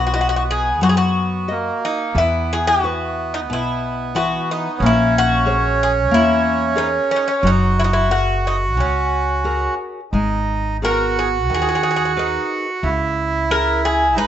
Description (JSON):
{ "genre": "fado-style ballad", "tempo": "90 BPM", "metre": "4/4", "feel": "rubato", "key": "B major", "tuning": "A4 = 439 Hz", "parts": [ { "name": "Greek bouzouki", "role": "melody", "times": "0.0-14.3 s", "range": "C#4 to B4", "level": "-20 LUFS", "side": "left 2 dB", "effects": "plate reverb, analog delay" }, { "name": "accordion", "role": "second line", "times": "0.0-14.3 s", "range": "A#3 to F#4", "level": "-21 LUFS", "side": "right 5 dB", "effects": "plate reverb" }, { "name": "nylon-string guitar", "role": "accompaniment", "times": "0.0-14.3 s", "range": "B2 to D#5", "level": "-23 LUFS", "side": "left 3 dB", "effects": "none" }, { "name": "upright bass", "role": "bass", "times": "0.0-14.3 s", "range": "F#1 to F#2", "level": "-23 LUFS", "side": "equal", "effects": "none" } ], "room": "moderate studio reverb, RT60 0.6 s", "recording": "rough home demo mix, nothing above 7.9 kHz", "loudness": "-16 LUFS", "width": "side -10 dB against mid", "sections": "0.0-14.3 A section", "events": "none", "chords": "0.0 B; 2.2 Esus2; 4.8 A#m7b5; 7.4 F#add9; 10.1 G#madd9; 12.8 C#m" }